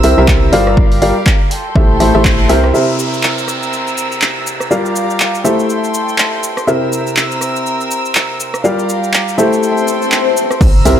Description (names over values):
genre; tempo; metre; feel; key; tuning
piano house; 122 BPM; 4/4; swing 58% on 16ths; C mixolydian; A4 = 439 Hz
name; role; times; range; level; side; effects
warm studio violin section; sustained chords; 0.0-11.0 s; C4 to E6; -20 LUFS; equal; sidechain pumping
warm grand piano; riff; 0.0-11.0 s; C3 to F5; -15 LUFS; equal; sidechain pumping, ping-pong delay
organ-like FM bass; bass; 0.0-2.7, 10.9-11.0 s; G1 to C2; -14 LUFS; equal; sidechain pumping
punchy analog drum machine; drums; 0.0-11.0 s; cabasa, crash cymbal, handclaps, hi-hat, rim click; -18 LUFS; equal; overdrive
electronic kick drum; drums; 0.3-2.4, 10.6-10.7 s; none; -12 LUFS; equal; overdrive
downlifter, swell and impact; sound effects; 2.7-11.0 s; none; -20 LUFS; left 3 dB; none
room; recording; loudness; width
light reverb; none; -11 LUFS; side -10 dB against mid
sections
0.0-2.7 A section; 2.7-10.6 B section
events
band accent 2.2; swell 9.8-10.6; impact 10.6-11.0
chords
0.0 C7; 0.8 Gm7; 1.5 Am7; 2.7 C7; 4.7 Gm7; 5.4 Am7; 6.7 C7; 8.6 Gm7; 9.4 Am7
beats
0.28 | 0.77 1.26 1.76 2.25 | 2.74 3.23 3.72 4.21 | 4.71 5.20 5.69 6.18 | 6.67 7.17 7.66 8.15 | 8.64 9.13 9.62 10.12 | 10.61